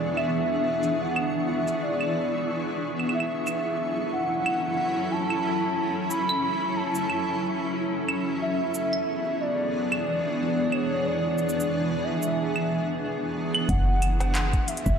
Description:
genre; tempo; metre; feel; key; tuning
IDM; 91 BPM; 4/4; swing 56% on 16ths; F# minor; A4 = 440 Hz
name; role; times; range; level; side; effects
warbly nostalgic lead; melody; 0.0-15.0 s; C#5 to B5; -29 LUFS; equal; chorus, tremolo, diffuse ambient delay
granular cloud pad; sustained chords; 0.0-15.0 s; E3 to A4; -27 LUFS; equal; built-in reverb
flickering grainy texture; texture; 0.0-13.7 s; E4 to C#6; -36 LUFS; right 2 dB; built-in reverb
electro analog drum machine; drums; 0.2-15.0 s; cabasa, claves, cowbell, handclaps, hi-hat; -31 LUFS; right 2 dB; low-pass filter on hats, low-pass filter on perc, low-pass filter on snare, low-pass filter on room
woody FM bass; bass; 13.7-15.0 s; F#1; -23 LUFS; equal; none
electronic kick drum; drums; 13.7-15.0 s; none; -26 LUFS; equal; overdrive
room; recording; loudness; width
wet lush hall reverb, RT60 2.6 s; dreamy mix soaked in reverb; -24 LUFS; side -7 dB against mid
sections
0.0-13.7 A section; 13.7-15.0 B section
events
none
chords
0.0 E7; 3.1 F#m7; 8.4 E7; 13.7 F#m7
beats
| 0.50 1.16 1.82 2.48 | 3.14 3.80 4.46 5.12 | 5.78 6.44 7.10 7.76 | 8.41 9.07 9.73 10.39 | 11.05 11.71 12.37 13.03 | 13.69 14.35

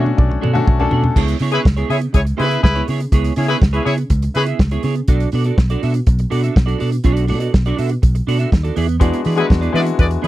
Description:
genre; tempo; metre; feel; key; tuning
disco; 122 BPM; 4/4; straight; unclear; A4 = 440 Hz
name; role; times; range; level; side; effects
clean electric guitar; accompaniment; 0.0-10.3 s; B3 to E5; -22 LUFS; right 6 dB; analog chorus
clear baby grand piano; accompaniment; 0.0-1.2, 9.0-10.3 s; G#3 to F#5; -20 LUFS; left 6 dB; none
fingered electric bass; bass; 0.0-10.3 s; B1 to E3; -18 LUFS; equal; none
warm soul drum kit; drums; 0.1-10.3 s; crash cymbal, hi-hat, kick drum, snare drum, toms; -15 LUFS; equal; none
clear horn section; stabs; 1.5-4.4, 9.4-10.3 s; C#4 to D5; -19 LUFS; left 4 dB; none
room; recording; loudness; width
little or no reverb; dry, close 1970s-style studio recording; -14 LUFS; side -15 dB against mid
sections
0.0-1.2 A section; 1.2-10.3 A section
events
drum fill 0.0-1.2; grand piano fill 0.0-1.2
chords
0.0 Bm7; 1.2 C#m7; 5.1 Bm7; 8.8 E7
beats
0.18 0.67 | 1.16 1.65 2.14 2.63 | 3.12 3.61 4.10 4.59 | 5.08 5.57 6.06 6.55 | 7.04 7.54 8.03 8.52 | 9.01 9.50 9.99

